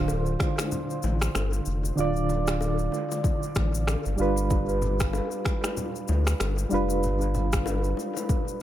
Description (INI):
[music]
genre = afrobeats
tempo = 95 BPM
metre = 4/4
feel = swing 58% on 16ths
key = D dorian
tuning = A4 = 441 Hz
[part]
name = soft electric-piano-like synth keys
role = accompaniment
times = 0.0-8.6 s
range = D3 to D5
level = -28 LUFS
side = right 2 dB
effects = chorus, tremolo, dub echo
[part]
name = saturated sub bass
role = bass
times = 0.0-7.9 s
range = D1 to D2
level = -27 LUFS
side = equal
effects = none
[part]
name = afro-pop drum kit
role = drums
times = 0.1-8.6 s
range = finger snaps, kick drum, rim click, shaker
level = -29 LUFS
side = equal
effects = none
[part]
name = bongos and congas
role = percussion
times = 0.1-8.5 s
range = none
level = -35 LUFS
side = left 4 dB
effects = dub echo
[sound]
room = light reverb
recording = echo-heavy mix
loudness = -24 LUFS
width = side -12 dB against mid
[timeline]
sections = 0.0-8.6 A section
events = none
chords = 0.0 Dm7; 4.2 G7